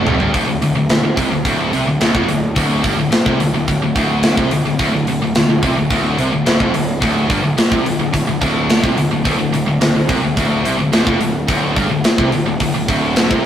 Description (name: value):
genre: heavy metal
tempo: 108 BPM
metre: 4/4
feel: straight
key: D minor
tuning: A4 = 440 Hz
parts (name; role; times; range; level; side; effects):
- heavy high-gain guitar; riff; 0.0-13.4 s; D2 to C3; -20 LUFS; right 5 dB; distortion
- scooped high-gain guitar; riff; 0.0-13.4 s; D2 to C3; -20 LUFS; left 6 dB; distortion
- fuzz picked electric bass; bass; 0.0-13.4 s; D1 to C2; -21 LUFS; equal; overdrive
- tight metal drum kit; drums; 0.1-13.4 s; hi-hat, kick drum, snare drum, toms; -17 LUFS; equal; none
room: moderate stone room reverb, RT60 1.3 s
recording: rough rehearsal-room recording, warm saturation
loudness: -13 LUFS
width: side -10 dB against mid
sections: 0.3-13.5 A section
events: drum fill 0.0-0.3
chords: none